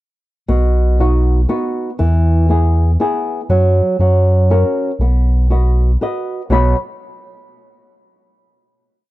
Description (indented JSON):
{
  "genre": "italian folk, Italian serenade",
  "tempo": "120 BPM",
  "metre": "3/4",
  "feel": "swing 54% on 8ths",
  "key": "B major",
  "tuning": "A4 = 440 Hz",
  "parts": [
    { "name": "flamenco guitar", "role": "accompaniment", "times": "0.5-6.8 s", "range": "B2 to B5", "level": "-18 LUFS", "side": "equal", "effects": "none" },
    { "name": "sub bass with octave", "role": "bass", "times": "0.5-6.7 s", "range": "B1 to F#2", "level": "-12 LUFS", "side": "equal", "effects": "tube saturation" }
  ],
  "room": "small room reverb",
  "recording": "dry, close 1970s-style studio recording",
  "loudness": "-12 LUFS",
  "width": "side -17 dB against mid",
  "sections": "0.5-6.5 A section; 6.5-8.0 final chord",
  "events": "none",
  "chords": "0.5 B; 2.0 E; 3.5 N.C.; 4.0 F#; 5.0 B",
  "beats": "| 0.49 0.99 1.49 | 1.99 2.49 2.99 | 3.49 3.99 4.49 | 4.99 5.49 6.00 | 6.50"
}